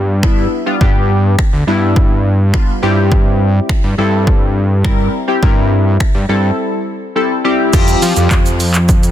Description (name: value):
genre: dance-pop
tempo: 104 BPM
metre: 4/4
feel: straight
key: unclear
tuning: A4 = 440 Hz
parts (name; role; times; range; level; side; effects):
- fat analog bass; bass; 0.0-9.1 s; D2 to F3; -13 LUFS; equal; sidechain pumping
- chorused retro synth keys; accompaniment; 0.2-8.4 s; F3 to Bb4; -16 LUFS; left 2 dB; sidechain pumping
- punchy analog drum machine; drums; 0.2-9.1 s; crash cymbal, finger snaps, handclaps, hi-hat, kick drum, shaker; -13 LUFS; equal; overdrive, soft clipping on snare
room: little or no reverb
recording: dense, heavily limited modern master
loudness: -11 LUFS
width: side -11 dB against mid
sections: 0.0-7.7 A section; 7.7-9.1 B section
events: break 6.6-7.7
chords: 0.0 G; 2.8 C/G; 7.7 Fsus2